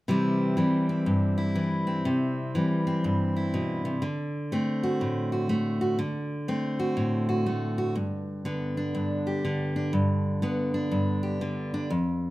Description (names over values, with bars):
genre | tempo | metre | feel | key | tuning
country | 122 BPM | 4/4 | swing 63% on 8ths | C major | A4 = 439 Hz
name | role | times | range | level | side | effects
picked steel-string acoustic guitar | solo | 0.1-12.3 s | F2 to G4 | -25 LUFS | equal | none
room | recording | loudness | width
moderate large studio reverb, RT60 1.0 s | none | -25 LUFS | side -17 dB against mid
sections
0.1-12.3 A section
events
none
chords
0.1 C; 4.0 D7; 8.0 G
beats
| 0.08 0.57 1.07 1.56 | 2.05 2.55 3.04 3.53 | 4.02 4.52 5.01 5.50 | 6.00 6.49 6.98 7.47 | 7.97 8.46 8.95 9.45 | 9.94 10.43 10.93 11.42 | 11.91